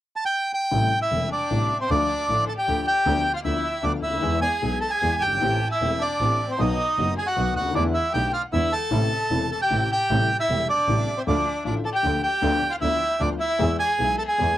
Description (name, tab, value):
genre	tango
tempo	154 BPM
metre	3/4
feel	rubato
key	A minor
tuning	A4 = 440 Hz
part	bandoneon	melody	0.2-14.6 s	C5 to A5	-23 LUFS	right 2 dB	cassette tape, tape echo
part	warm upright piano	accompaniment	0.7-14.6 s	E1 to G#4	-29 LUFS	left 6 dB	cassette tape
part	clear double bass	bass	0.7-14.6 s	E1 to E2	-27 LUFS	right 1 dB	none
part	rich violin	second line	1.0-14.6 s	C4 to A4	-30 LUFS	left 5 dB	cassette tape
part	dark studio string section	stabs	5.4-14.6 s	G#3 to G#4	-34 LUFS	right 6 dB	cassette tape
room	moderate booth ambience, RT60 0.2 s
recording	home recording on cassette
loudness	-20 LUFS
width	side -13 dB against mid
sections	0.7-10.1 A section; 10.1-14.6 A section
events	none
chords	0.0 N.C.; 0.7 Am7; 1.9 Dm; 3.1 Bdim/D; 4.2 E; 5.4 Am7; 6.6 B; 7.8 E7sus4; 8.5 E7; 8.9 Am; 10.1 Am7; 11.3 Dm; 12.4 Bdim/D; 13.6 E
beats	0.34 | 0.73 1.12 1.51 | 1.91 2.29 2.68 | 3.06 3.45 3.84 | 4.23 4.63 5.02 | 5.42 5.82 6.21 | 6.60 6.99 7.38 | 7.76 8.15 8.54 | 8.92 9.31 9.71 | 10.10 10.50 10.89 | 11.28 11.66 12.04 | 12.43 12.82 13.21 | 13.60 13.99 14.39